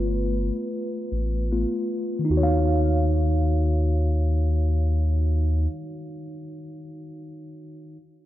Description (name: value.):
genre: lo-fi hip hop.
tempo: 76 BPM.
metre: 4/4.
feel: swing 56% on 16ths.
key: Eb minor.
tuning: A4 = 440 Hz.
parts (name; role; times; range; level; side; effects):
mellow tine electric piano; accompaniment; 0.0-8.0 s; Eb3 to F5; -27 LUFS; left 1 dB; medium stereo tremolo, cassette tape, low-pass filter.
round analog bass; bass; 0.0-5.7 s; G1 to Eb2; -22 LUFS; equal; none.
room: moderate lush hall reverb, RT60 3.2 s.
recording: dreamy mix soaked in reverb, cassette tape.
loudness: -21 LUFS.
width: side -14 dB against mid.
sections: 0.0-2.3 A section; 2.3-5.5 B section.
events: tine electric piano solo 0.0-2.3; filter sweep on tine electric piano 0.0-2.3.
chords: 0.0 G9; 2.3 Ebm9.